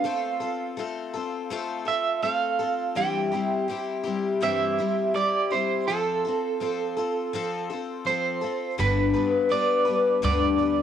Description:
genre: acoustic folk duo or small band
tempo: 82 BPM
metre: 4/4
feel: straight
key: unclear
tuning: A4 = 440 Hz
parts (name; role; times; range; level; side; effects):
- electric guitar at the edge of break-up; melody; 0.0-10.8 s; A4 to G5; -26 LUFS; right 6 dB; tremolo, cassette tape
- picked twelve-string acoustic guitar; accompaniment; 0.0-10.8 s; G2 to B4; -26 LUFS; left 6 dB; cassette tape
- upright bass; bass; 8.8-10.8 s; G1 to D2; -27 LUFS; right 1 dB; none
room: light reverb, small room ambience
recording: home recording on cassette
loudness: -23 LUFS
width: side -9 dB against mid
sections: 0.0-8.8 A section; 8.8-10.8 B section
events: none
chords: 0.0 F/A; 3.0 C/G; 5.9 F; 8.8 G

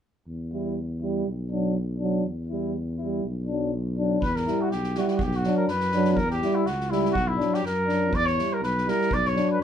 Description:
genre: balkan folk, Balkan brass band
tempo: 123 BPM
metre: 2/4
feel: swing 54% on 16ths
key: E dorian sharp4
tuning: A4 = 440 Hz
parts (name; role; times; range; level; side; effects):
- mellow tuba; bass; 0.3-9.6 s; B1 to F#2; -29 LUFS; equal; none
- clear euphonium; accompaniment; 0.5-9.6 s; D4 to E4; -29 LUFS; left 7 dB; none
- mellow euphonium; accompaniment; 0.5-9.6 s; F#3 to G3; -28 LUFS; right 5 dB; none
- mellow trumpet; melody; 4.2-9.6 s; E4 to D5; -26 LUFS; equal; none
- soft-mallet drum kit; percussion; 4.2-9.6 s; kick drum, snare drum; -35 LUFS; equal; none
room: light reverb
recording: band playing live in one room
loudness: -23 LUFS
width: side -9 dB against mid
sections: 0.3-4.2 A section; 4.2-9.6 B section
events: none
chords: 0.3 Em; 1.3 Bm; 2.3 Em; 3.2 Bm; 4.2 Em; 5.2 Bm; 6.2 Em; 7.2 Bm; 8.1 Em; 9.1 Bm

